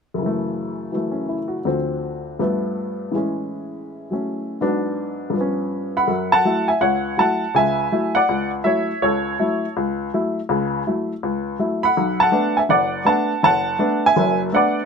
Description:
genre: solo jazz.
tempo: 163 BPM.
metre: 4/4.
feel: swing 66% on 8ths.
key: F# minor.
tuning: A4 = 439 Hz.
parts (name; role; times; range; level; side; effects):
warm upright piano; solo; 0.1-14.8 s; F#1 to B5; -18 LUFS; equal; none.
room: light reverb.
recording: minimal, uncompressed stereo recording.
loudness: -18 LUFS.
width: side -5 dB against mid.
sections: 0.2-6.1 A section; 6.1-14.9 B section.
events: none.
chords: 0.2 F#m7; 1.7 Dm7; 2.4 G9; 3.1 Amaj7; 4.6 G#m7b5; 5.3 G7#11; 6.1 F#m7; 12.0 Bm7.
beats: | 0.20 0.56 0.93 1.30 | 1.67 2.04 2.40 2.77 | 3.14 3.51 3.87 4.24 | 4.61 4.98 5.34 5.71 | 6.08 6.45 6.82 7.18 | 7.55 7.92 8.29 8.65 | 9.02 9.39 9.76 10.12 | 10.49 10.86 11.23 11.60 | 11.96 12.33 12.70 13.07 | 13.44 13.80 14.17 14.54.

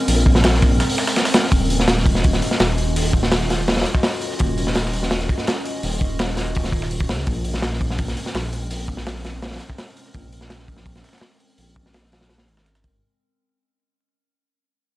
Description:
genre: drum and bass, jungle.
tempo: 167 BPM.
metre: 4/4.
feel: straight.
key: Eb minor.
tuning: A4 = 440 Hz.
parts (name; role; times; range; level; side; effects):
warbly tape-like pad; sustained chords; 0.0-12.5 s; Ab3 to Eb5; -27 LUFS; equal; chorus, built-in reverb.
dark detuned saw bass; bass; 0.1-13.0 s; Eb1 to Db2; -22 LUFS; equal; none.
crunchy breakbeat drum kit; drums; 0.1-12.9 s; hi-hat, kick drum, snare drum; -20 LUFS; equal; none.
dusty soul sampler-style drum kit; drums; 0.1-12.9 s; hi-hat, snare drum; -29 LUFS; right 1 dB; high-pass filter on hats, high-pass filter on snare.
room: studio reverb.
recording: dry, gritty hardware recording, vinyl crackle.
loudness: -17 LUFS.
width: side -17 dB against mid.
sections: 0.0-1.5 A section; 1.5-13.0 B section.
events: drop 0.0-1.5; break 0.8-1.5; fade-out 1.5-13.0.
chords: 0.0 Bbm9; 1.5 Ebm9; 7.3 Bbm9.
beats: | 0.08 0.44 0.80 1.16 | 1.52 1.88 2.24 2.60 | 2.96 3.32 3.68 4.04 | 4.39 4.75 5.11 5.47 | 5.83 6.19 6.55 6.91 | 7.27 7.63 7.99 8.35 | 8.71 9.06 9.42 9.78 | 10.14 10.50 10.86 11.22 | 11.58 11.94 12.30 12.66.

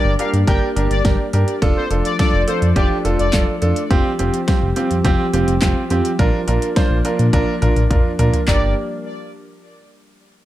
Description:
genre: synth-pop.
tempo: 105 BPM.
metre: 4/4.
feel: straight.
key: G minor.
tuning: A4 = 440 Hz.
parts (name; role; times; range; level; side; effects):
analog synth brass; second line; 0.0-3.4, 8.5-8.7 s; C5 to G5; -24 LUFS; left 2 dB; chorus, digital delay.
warm baby grand piano; accompaniment; 0.0-8.7 s; C4 to C5; -21 LUFS; right 3 dB; none.
lush unison pad; sustained chords; 0.0-8.7 s; F3 to D4; -25 LUFS; left 1 dB; chorus.
smooth synth bass; bass; 0.0-8.7 s; F1 to Bb2; -18 LUFS; equal; none.
pop drum kit; drums; 0.2-8.6 s; handclaps, hi-hat, kick drum, snare drum, toms; -18 LUFS; equal; overdrive.
room: light reverb, digital ambience.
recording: dark, warm production.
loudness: -14 LUFS.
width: side -14 dB against mid.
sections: 0.0-8.5 A section; 8.5-10.4 B section.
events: drum fill 7.3-8.5.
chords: 0.0 Gm; 1.6 Dm/F; 3.9 Fsus2; 6.2 Bb; 8.5 Gm.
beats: 0.48 1.05 | 1.62 2.19 2.76 3.33 | 3.91 4.48 5.05 5.62 | 6.19 6.76 7.33 7.91 | 8.48.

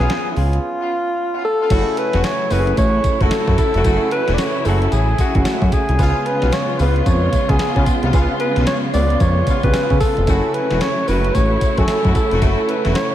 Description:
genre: R&B, new jack swing.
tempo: 112 BPM.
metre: 4/4.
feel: swing 61% on 16ths.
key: F# minor.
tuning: A4 = 440 Hz.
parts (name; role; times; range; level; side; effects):
breathy alto saxophone; melody; 0.0-13.1 s; E4 to D5; -20 LUFS; equal; analog delay.
warm grand piano; accompaniment; 0.0-13.1 s; G#3 to G#5; -26 LUFS; right 4 dB; none.
warm horn section; stabs; 0.0-13.0 s; A3 to F#4; -29 LUFS; left 2 dB; analog delay.
fat analog bass; bass; 0.0-12.9 s; E1 to C#3; -18 LUFS; equal; none.
clean 12-bit digital drum machine; drums; 0.0-13.1 s; crash cymbal, hi-hat, kick drum, snare drum, tambourine; -20 LUFS; equal; none.
rich studio string section; sustained chords; 1.7-13.1 s; C#3 to E#4; -24 LUFS; left 1 dB; none.
room: moderate lush hall reverb, RT60 2.2 s.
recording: dreamy mix soaked in reverb.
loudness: -14 LUFS.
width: side -12 dB against mid.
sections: 0.0-1.7 A section; 1.7-13.1 B section.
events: break 0.6-1.7.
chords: 0.0 C#7; 1.7 F#m7; 6.0 C#7; 10.3 F#m7.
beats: 0.10 0.63 1.17 | 1.70 2.24 2.77 3.31 | 3.85 4.38 4.92 5.45 | 5.99 6.53 7.06 7.60 | 8.13 8.67 9.20 9.74 | 10.28 10.81 11.35 11.88 | 12.42 12.95.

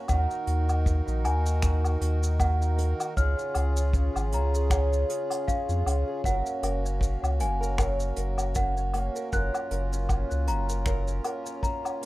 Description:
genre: folktronica.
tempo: 78 BPM.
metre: 4/4.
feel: swing 56% on 16ths.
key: F# major.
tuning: A4 = 441 Hz.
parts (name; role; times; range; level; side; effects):
worn celesta; second line; 0.0-12.1 s; E#5 to F#6; -34 LUFS; equal; digital delay.
pedal harmonium; sustained chords; 0.0-12.1 s; C#3 to A#4; -36 LUFS; right 1 dB; none.
fingerpicked twelve-string acoustic guitar; arpeggios; 0.0-12.1 s; F#2 to A#4; -34 LUFS; right 1 dB; vintage 12-bit sampler grit, digital delay.
warm sub bass; bass; 0.1-11.2 s; F#1 to E#2; -26 LUFS; equal; none.
kick drum; drums; 0.1-11.8 s; none; -28 LUFS; equal; none.
vintage brush drum kit; drums; 0.1-12.1 s; finger snaps, hi-hat, shaker, woodblock; -34 LUFS; left 1 dB; none.
room: small room ambience.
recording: rough home demo mix.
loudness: -24 LUFS.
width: side -17 dB against mid.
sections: 0.0-12.1 A section.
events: none.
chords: 0.1 D#m; 3.2 C#; 6.2 F#.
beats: | 0.10 0.86 1.63 2.40 | 3.17 3.94 4.71 5.48 | 6.25 7.02 7.79 8.56 | 9.32 10.10 10.86 11.63.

